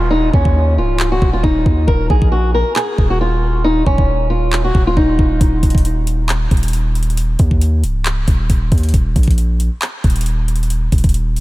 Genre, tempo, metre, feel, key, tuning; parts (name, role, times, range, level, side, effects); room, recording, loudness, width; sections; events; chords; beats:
hip hop, trap; 136 BPM; 4/4; half-time; Eb minor; A4 = 440 Hz
fingerpicked old ladder-braced acoustic guitar; melody; 0.0-5.4 s; Db4 to Bb4; -17 LUFS; equal; low-pass filter, analog delay
long sustained 808-style bass; bass; 0.0-11.4 s; Db1 to Eb2; -16 LUFS; equal
downlifter; sound effects; 0.0-1.9 s; -32 LUFS; right 1 dB
trap drum kit; drums; 0.3-11.4 s; handclaps, hi-hat, kick drum; -16 LUFS; equal
light reverb; -12 LUFS; side -18 dB against mid
0.0-11.4 A section
break 0.0-5.4
0.0 Dbadd9; 1.9 Eb5; 5.4 N.C.; 8.9 Eb5
| 0.12 0.56 1.00 1.44 | 1.88 2.32 2.76 3.20 | 3.64 4.09 4.53 4.97 | 5.41 5.85 6.29 6.73 | 7.17 7.62 8.06 8.50 | 8.94 9.38 9.82 10.26 | 10.70 11.14